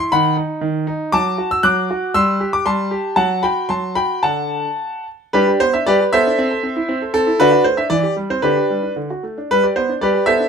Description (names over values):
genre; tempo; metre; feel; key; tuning
classical-period piano sonatina; 107-120 BPM; 2/4; rubato; G major; A4 = 440 Hz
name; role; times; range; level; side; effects
clear concert grand piano; solo; 0.0-10.5 s; D3 to F#6; -15 LUFS; equal; none
room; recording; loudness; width
light reverb; close, detailed microphones; -15 LUFS; side -6 dB against mid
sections
0.0-5.3 A section; 5.3-10.5 B section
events
none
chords
0.1 B/D#; 0.6 N.C.; 1.1 D/F#; 2.1 Cadd9/G; 2.7 Am7/G; 3.2 Am13/F#; 4.2 D; 5.3 G; 6.4 Am/C; 7.4 D; 7.9 C/E; 8.4 G/D; 9.0 D; 9.5 G